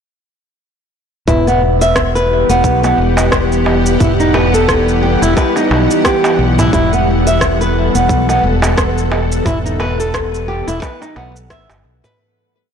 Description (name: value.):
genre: organic downtempo.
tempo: 88 BPM.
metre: 4/4.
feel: swing 57% on 16ths.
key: E minor.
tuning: A4 = 440 Hz.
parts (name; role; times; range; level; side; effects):
bowed-like drone; sustained chords; 1.8-12.1 s; E3 to F#5; -16 LUFS; left 1 dB; built-in reverb, sidechain pumping.
flamenco guitar; arpeggios; 1.3-12.2 s; B3 to E5; -16 LUFS; equal; ping-pong delay.
mellow fretless electric bass; bass; 1.3-12.0 s; E1 to B1; -17 LUFS; equal; transformer saturation, sidechain pumping.
electronic kick drum; drums; 1.3-11.7 s; none; -18 LUFS; equal; overdrive.
electronic shaker and rim click; drums; 1.3-12.2 s; none; -21 LUFS; equal; overdrive.
darbuka; percussion; 1.3-12.2 s; none; -21 LUFS; right 2 dB; none.
bronze singing bowl; texture; 1.3-12.2 s; B3 to B4; -24 LUFS; left 3 dB; none.
room: moderate lush hall reverb, RT60 2.6 s.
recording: blown-out, overdriven recording, overdrive.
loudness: -11 LUFS.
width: side -7 dB against mid.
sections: 1.3-12.2 groove.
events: fade-out 8.6-12.2.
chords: 1.3 Emadd9.